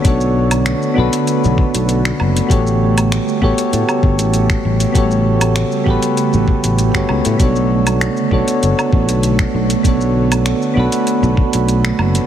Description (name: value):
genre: sunset chillout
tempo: 98 BPM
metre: 4/4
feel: straight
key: B minor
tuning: A4 = 440 Hz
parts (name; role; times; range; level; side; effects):
- soft electric-piano-like synth keys; accompaniment; 0.0-12.3 s; B3 to C#5; -18 LUFS; equal; chorus, tremolo, auto-pan, tape echo
- ethereal airy pad; sustained chords; 0.0-12.3 s; C#3 to B3; -20 LUFS; right 3 dB; ensemble chorus, built-in reverb, phaser
- sustaining fretless electric bass; bass; 0.0-12.2 s; F#1 to A2; -16 LUFS; equal; tube saturation
- electronic kick drum; drums; 0.0-11.5 s; none; -15 LUFS; equal; none
- smooth R&B drum kit; drums; 0.0-12.3 s; finger snaps, hi-hat, shaker, woodblock; -23 LUFS; equal; none
room: light reverb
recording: heavily compressed radio sound, multiband compression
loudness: -12 LUFS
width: side -10 dB against mid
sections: 0.0-12.3 A section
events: none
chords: 0.0 Bm9; 2.5 A13; 7.4 Bm9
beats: | 0.05 0.67 1.28 1.89 | 2.50 3.11 3.73 4.34 | 4.95 5.56 6.18 6.79 | 7.40 8.01 8.62 9.24 | 9.85 10.46 11.07 11.69